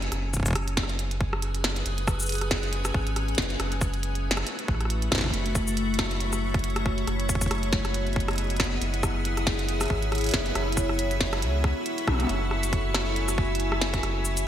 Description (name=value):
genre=IDM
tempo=138 BPM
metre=4/4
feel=swing 56% on 16ths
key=unclear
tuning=A4 = 440 Hz
part: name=icy glass pad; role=sustained chords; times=0.0-14.5 s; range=A3 to E5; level=-30 LUFS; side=left 1 dB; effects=chorus, built-in reverb
part: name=warm sub bass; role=bass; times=0.0-14.5 s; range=F#1 to C#2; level=-29 LUFS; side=equal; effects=tube saturation
part: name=glitchy drum kit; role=drums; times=0.0-14.4 s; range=cabasa, hi-hat, rim click, snare drum, toms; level=-30 LUFS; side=equal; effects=small room reverb, gated reverb, digital delay
part: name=electronic kick drum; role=drums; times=0.3-14.0 s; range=none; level=-27 LUFS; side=equal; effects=small room reverb
room=light reverb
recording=bright 1980s-style digital production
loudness=-24 LUFS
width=side -10 dB against mid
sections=0.0-12.3 A section; 12.3-14.5 A section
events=drum fill 12.1; band accent 12.1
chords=0.1 F#sus24; 3.6 B7sus4/F#; 5.3 F#m7; 7.1 Emaj7/F#; 8.8 C#m7/F#; 10.6 B7sus4/F#